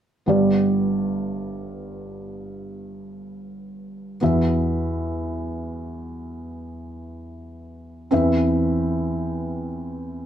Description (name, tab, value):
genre	folk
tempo	free time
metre	none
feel	none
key	G major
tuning	A4 = 440 Hz
part	felt-muted upright piano	solo	0.3-10.3 s	G1 to E5	-23 LUFS	equal	none
room	moderate studio reverb, RT60 0.6 s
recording	none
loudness	-20 LUFS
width	side -10 dB against mid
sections	0.3-10.3 A section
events	none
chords	0.3 G; 4.2 Esus2; 8.1 Cmaj7/E